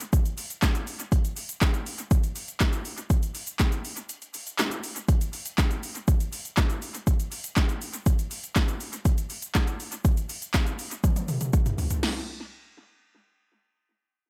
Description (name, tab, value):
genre	pop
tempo	121 BPM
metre	4/4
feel	straight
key	none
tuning	none
part	deep house drum kit	drums	0.0-12.1 s	crash cymbal, handclaps, hi-hat, kick drum, shaker, snare drum, toms	-27 LUFS	equal	overdrive
room	little or no reverb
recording	echo-heavy mix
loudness	-27 LUFS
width	mono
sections	0.0-12.0 A section; 12.0-14.3 B section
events	break 4.1-5.1; drum fill 11.0-12.0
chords	none